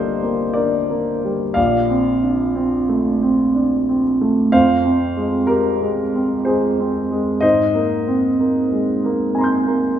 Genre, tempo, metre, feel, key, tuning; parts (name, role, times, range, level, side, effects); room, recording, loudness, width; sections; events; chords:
classical, impressionist solo piano; 62 BPM; 3/4; rubato; A4 = 440 Hz
warm grand piano; solo; 0.0-10.0 s; G1 to G6; -16 LUFS; equal
wet recital hall reverb, RT60 1.5 s; heard from further back in the room, nothing above 10.3 kHz; -15 LUFS; side -10 dB against mid
0.0-10.0 A section
0.0 Gmadd9; 1.6 Bbmaj9; 4.5 Fmadd9; 7.4 Abmaj9